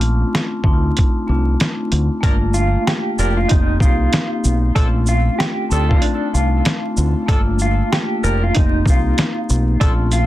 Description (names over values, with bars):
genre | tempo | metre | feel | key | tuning
hip hop, boom-bap hip-hop | 95 BPM | 4/4 | swing 62% on 16ths | G minor | A4 = 438 Hz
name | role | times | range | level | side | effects
vibraphone with soft mallets | accompaniment | 0.0-10.3 s | A3 to G4 | -22 LUFS | left 2 dB | cassette tape, high-pass filter, low-pass filter
deep dub fingered electric bass | bass | 0.0-10.3 s | F1 to D2 | -17 LUFS | equal | none
lo-fi sampler-style drum kit | drums | 0.0-10.3 s | hi-hat, kick drum, shaker, snare drum | -17 LUFS | equal | none
bright saxophone section | stabs | 2.2-9.9 s | F3 to Bb4 | -28 LUFS | right 1 dB | high-pass filter, low-pass filter, plate reverb, tape echo
mellow electric guitar | melody | 2.5-10.3 s | D4 to G4 | -24 LUFS | right 1 dB | tremolo, high-pass filter, low-pass filter, plate reverb, tape echo
room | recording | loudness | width
light reverb | dense, heavily limited modern master, vinyl crackle | -14 LUFS | side -15 dB against mid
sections
0.0-2.2 A section; 2.2-10.3 B section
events
break 0.0-2.2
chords
0.0 Bbmaj9; 0.7 Dm7; 2.2 Gm9; 3.5 F7sus4; 4.8 Bbmaj9; 5.7 Dm7; 7.3 Gm9; 8.6 F7sus4